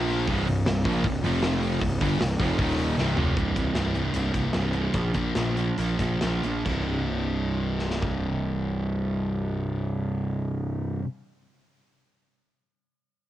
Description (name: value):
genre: hard rock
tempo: 132-156 BPM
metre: 4/4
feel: straight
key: unclear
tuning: A4 = 440 Hz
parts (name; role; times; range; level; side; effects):
- distorted electric guitar; riff; 0.0-3.4 s; C2 to Bb3; -33 LUFS; equal; overdrive, cassette tape
- overdriven semi-hollow guitar; riff; 0.0-11.1 s; C2 to Bb3; -30 LUFS; right 6 dB; cassette tape
- sludgy distorted guitar; riff; 0.0-11.1 s; C2 to Bb3; -31 LUFS; left 6 dB; overdrive, cassette tape
- fuzz picked electric bass; bass; 0.0-11.0 s; C1 to Bb1; -28 LUFS; equal; overdrive
- big rock drum kit; drums; 0.1-8.1 s; crash cymbal, hi-hat, kick drum, snare drum, toms; -30 LUFS; equal; cassette tape
room: studio reverb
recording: home recording on cassette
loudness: -24 LUFS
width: side -13 dB against mid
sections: 0.0-3.4 A section; 3.4-6.7 B section; 6.7-10.3 C section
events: drum fill 3.0-3.4; slowing down 3.4-6.7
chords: 0.3 C5; 1.2 F5; 1.8 C5; 2.6 Eb5; 3.0 C5; 4.9 Bb5; 6.7 C5